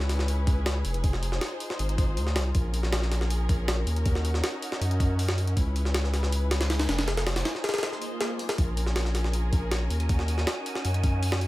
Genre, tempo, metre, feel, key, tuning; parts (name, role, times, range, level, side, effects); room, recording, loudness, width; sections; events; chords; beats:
drum and bass, jungle; 159 BPM; 4/4; straight; Bb minor; A4 = 439 Hz
dark studio string section; sustained chords; 0.0-11.5 s; Db4 to C5; -35 LUFS; left 1 dB
saturated sub bass; bass; 0.0-11.5 s; F1 to Gb2; -26 LUFS; equal; tube saturation
jungle sampler-style drum kit; drums; 0.0-11.5 s; hi-hat, kick drum, snare drum; -28 LUFS; equal; studio reverb
swell; sound effects; 8.0-8.6 s; -38 LUFS; right 3 dB
wind-like tuned noise texture; texture; 9.2-11.5 s; Ab5; -39 LUFS; right 2 dB; built-in reverb
digital ambience; -24 LUFS; side -17 dB against mid
0.0-11.5 A section
break 7.8-8.6; swell 8.0-8.6
0.0 Dbm7; 1.0 Fm7; 2.5 Bbm7; 4.1 Ebm7; 5.6 Dbm7; 7.1 Fm7; 8.6 Bbm7; 10.1 Ebm7
0.28 0.66 | 1.04 1.41 1.79 2.17 | 2.55 2.92 3.30 3.68 | 4.06 4.43 4.81 5.19 | 5.57 5.94 6.32 6.70 | 7.07 7.45 7.83 8.21 | 8.58 8.96 9.34 9.72 | 10.09 10.47 10.85 11.22